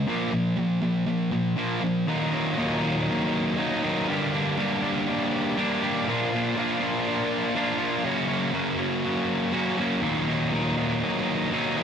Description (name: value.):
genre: rock.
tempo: 121 BPM.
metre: 4/4.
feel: straight.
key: Eb minor.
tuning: A4 = 440 Hz.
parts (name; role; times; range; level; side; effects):
thick fuzz guitar; solo; 0.0-11.8 s; Eb2 to G4; -23 LUFS; equal; distortion.
room: moderate large studio reverb, RT60 1.3 s, digital ambience.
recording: none.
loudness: -23 LUFS.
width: side -7 dB against mid.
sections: 0.0-2.1 A section; 2.1-11.8 B section.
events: none.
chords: 0.1 Bb5; 2.1 Ebm; 4.1 Gm; 6.1 Bb; 8.1 Gb; 10.0 Ebm.